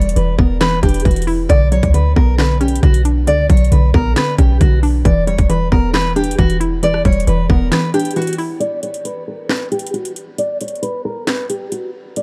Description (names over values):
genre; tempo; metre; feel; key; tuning
hip hop, trap; 135 BPM; 4/4; half-time; unclear; A4 = 440 Hz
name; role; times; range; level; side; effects
fingerpicked steel-string acoustic guitar; melody; 0.0-12.2 s; F#4 to D5; -22 LUFS; equal; low-pass filter
hollow square pluck; accompaniment; 0.0-8.6 s; D3 to E4; -22 LUFS; equal; chorus, low-pass filter
clean 808-style bass; bass; 0.0-7.7 s; E1 to D2; -17 LUFS; equal; none
trap drum kit; drums; 0.0-12.2 s; handclaps, hi-hat, kick drum, rim click, snare drum; -19 LUFS; equal; overdrive
room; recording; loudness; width
little or no reverb; dark, warm production; -15 LUFS; mono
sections
0.0-8.6 A section; 8.6-12.2 B section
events
break 7.7-8.6, 8.6-12.2; filter sweep 8.6-12.2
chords
0.0 Em7; 1.5 Bmadd9; 5.1 Em7; 8.6 N.C.